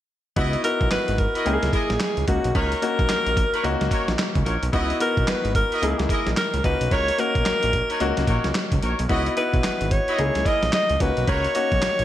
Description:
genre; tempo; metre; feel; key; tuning
R&B, new jack swing; 110 BPM; 4/4; swing 61% on 16ths; C# dorian; A4 = 440 Hz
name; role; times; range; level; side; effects
clear baby grand piano; accompaniment; 0.4-12.0 s; A#3 to G#4; -27 LUFS; left 4 dB; none
clear horn section; stabs; 0.4-11.5 s; D#4 to D#5; -30 LUFS; right 1 dB; none
fat analog bass; bass; 0.4-12.0 s; G#1 to C#2; -25 LUFS; right 1 dB; none
dusty soul sampler-style drum kit; drums; 0.4-12.0 s; handclaps, hi-hat, kick drum, snare drum; -25 LUFS; right 1 dB; gated reverb
clear alto saxophone; melody; 0.6-12.0 s; F#4 to D#5; -24 LUFS; equal; ping-pong delay
room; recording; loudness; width
light reverb; none; -20 LUFS; side -12 dB against mid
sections
0.4-12.0 A section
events
none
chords
0.4 C#m11; 1.5 C#m69; 2.3 Bmaj9; 4.7 C#m11; 5.8 C#m69; 6.6 Bmaj9; 9.1 C#m11; 10.2 C#m69; 11.0 Bmaj9

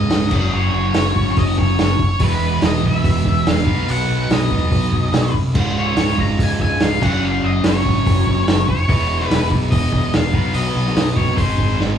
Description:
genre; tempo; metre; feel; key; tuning
classic rock; 144 BPM; 4/4; straight; unclear; A4 = 439 Hz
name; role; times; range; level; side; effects
octave-fuzz lead guitar; melody; 0.0-11.8 s; B4 to Bb5; -23 LUFS; left 2 dB; distortion
overdriven electric guitar; riff; 0.0-12.0 s; Db2 to Cb5; -21 LUFS; right 2 dB; none
fuzz fingered electric bass; bass; 0.0-12.0 s; Db1 to C2; -21 LUFS; equal; overdrive
vintage drum kit; drums; 0.1-11.9 s; crash cymbal, hi-hat, kick drum, snare drum; -19 LUFS; equal; none
room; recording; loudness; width
light reverb; band playing live in one room; -15 LUFS; side -8 dB against mid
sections
0.0-12.0 A section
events
drum fill 11.8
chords
0.3 Gb5; 2.2 E; 3.7 Cb; 5.6 Db; 7.0 Gb5; 8.9 E; 10.3 Cb; 11.4 Ab

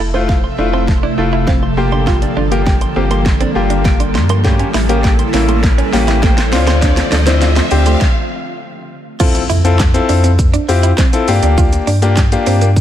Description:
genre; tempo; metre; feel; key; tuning
dance-pop; 101 BPM; 4/4; straight; F major; A4 = 441 Hz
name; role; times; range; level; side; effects
glassy FM pad; sustained chords; 0.1-8.0 s; C3 to E5; -20 LUFS; right 1 dB; ensemble chorus, built-in reverb, sidechain pumping
open-back banjo; arpeggios; 0.0-8.0 s; F3 to C6; -24 LUFS; right 6 dB; sidechain pumping, diffuse ambient delay
direct-recorded clean electric guitar; riff; 0.0-12.7 s; A3 to F4; -22 LUFS; right 7 dB; lush chorus
sub bass with octave; bass; 0.0-12.8 s; F1 to G2; -15 LUFS; equal; sidechain pumping
riser and impact; sound effects; 2.8-11.6 s; none; -26 LUFS; left 1 dB; none
clear concert grand piano; accompaniment; 0.1-12.7 s; A3 to A4; -18 LUFS; left 5 dB; sidechain pumping
pop drum kit; drums; 0.3-12.8 s; crash cymbal, handclaps, hi-hat, kick drum, shaker, snare drum; -15 LUFS; equal; none
room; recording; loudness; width
light reverb, digital ambience; none; -11 LUFS; side -11 dB against mid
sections
0.0-9.2 A section; 9.2-12.8 B section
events
build-up 0.0-9.2; drum fill 0.0-8.0; riser 2.8-9.2; stop 8.0-9.2; drop 9.2-12.8; impact 9.2-11.6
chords
0.0 Fmaj7; 1.8 Gm7; 4.4 A7b9; 6.5 Dm7; 9.2 Fmaj7; 11.3 Gm7

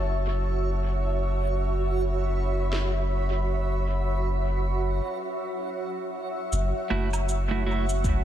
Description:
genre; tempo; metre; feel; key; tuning
ambient dub; 79 BPM; 4/4; swing 60% on 16ths; F# minor; A4 = 440 Hz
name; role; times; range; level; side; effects
granular cloud pad; sustained chords; 0.0-8.2 s; F#4 to B5; -30 LUFS; equal; built-in reverb
soft dub sub bass; bass; 0.0-8.2 s; F#1; -26 LUFS; equal; none
backwards swelling texture; texture; 0.0-5.0 s; F#4; -36 LUFS; right 6 dB; built-in reverb
electronic snare drum, cabasa and woodblock; drums; 2.7-8.2 s; none; -38 LUFS; right 1 dB; dub echo
clean electric guitar; stabs; 6.9-7.8 s; A3 to F#4; -30 LUFS; right 5 dB; dub echo
electronic kick drum; drums; 8.0-8.2 s; none; -25 LUFS; equal; none
room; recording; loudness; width
light reverb; none; -24 LUFS; side -11 dB against mid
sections
0.0-6.5 A section; 6.5-8.2 B section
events
break 5.0-6.5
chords
0.0 F#m7

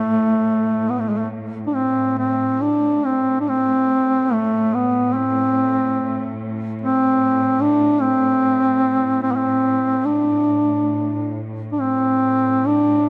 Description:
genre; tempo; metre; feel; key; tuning
caucasian folk, Caucasian lament; 71 BPM; 3/4; uneven beats, rubato; A minor; A4 = 441 Hz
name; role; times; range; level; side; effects
mellow duduk; melody; 0.0-13.1 s; G#3 to D4; -19 LUFS; equal; none
rich studio cello section; drone; 0.0-13.1 s; A2; -31 LUFS; equal; none
room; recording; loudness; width
light reverb; close, detailed microphones; -19 LUFS; mono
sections
0.0-1.7 A section; 1.7-13.1 B section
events
none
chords
none

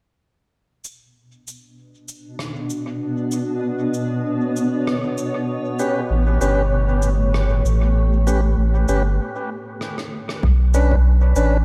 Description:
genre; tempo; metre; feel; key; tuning
ambient dub; 97 BPM; 4/4; swing 56% on 16ths; B minor; A4 = 440 Hz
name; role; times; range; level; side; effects
granular cloud pad; sustained chords; 2.4-11.6 s; A2 to C#5; -26 LUFS; equal; built-in reverb
cabasa and rim click; drums; 0.8-11.5 s; none; -36 LUFS; equal; dub echo
tonewheel organ; stabs; 5.8-11.6 s; C#4 to B4; -27 LUFS; equal; overdrive, stopped rotary speaker, dub echo
warm sub bass; bass; 6.1-11.6 s; G1 to B1; -19 LUFS; equal; none
electronic kick drum; drums; 10.4-11.0 s; none; -26 LUFS; equal; none
room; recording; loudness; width
moderate lush hall reverb, RT60 1.9 s, studio reverb; dreamy mix soaked in reverb; -20 LUFS; mono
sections
0.5-10.4 A section; 10.4-11.6 B section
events
break 9.2-10.4; drum fill 9.8-10.4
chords
0.5 Bmadd9; 5.5 A7; 10.4 Bmadd9

